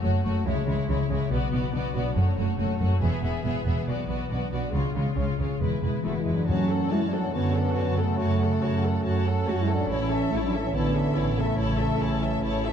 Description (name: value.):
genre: cinematic, heroic adventure film score.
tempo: 141 BPM.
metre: 4/4.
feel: straight.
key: F# minor.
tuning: A4 = 440 Hz.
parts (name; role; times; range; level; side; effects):
rich studio violin section; melody; 0.0-12.7 s; B4 to A5; -38 LUFS; left 3 dB; none.
rich symphonic violin section; second line; 0.0-12.7 s; E4 to E5; -36 LUFS; left 3 dB; none.
clear chamber viola section; accompaniment; 0.0-12.7 s; G#3 to A4; -33 LUFS; equal; none.
concert harp; arpeggios; 0.0-12.7 s; E2 to C#5; -33 LUFS; left 9 dB; none.
clear symphonic double bass section; bass; 0.0-12.7 s; E1 to F#2; -28 LUFS; right 3 dB; none.
warm symphonic cello section; bass; 0.0-12.6 s; E2 to A3; -30 LUFS; right 2 dB; none.
dark French horn section; sustained chords; 6.0-12.7 s; A3 to F#4; -29 LUFS; left 2 dB; none.
bright trombone section; sustained chords; 6.5-12.7 s; E3 to C#4; -34 LUFS; right 4 dB; none.
timpani; percussion; 6.5-7.1 s; F#2; -33 LUFS; left 1 dB; none.
room: moderate scoring stage reverb, RT60 1.8 s.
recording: dark, warm production.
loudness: -23 LUFS.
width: side -8 dB against mid.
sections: 0.0-6.5 A section; 6.5-12.7 B section.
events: build-up 0.0-6.5.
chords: 0.5 C#m; 1.3 Bm; 2.2 F#m; 3.0 E; 3.9 Bm; 4.7 C#; 5.6 E; 6.5 F#m; 9.9 A.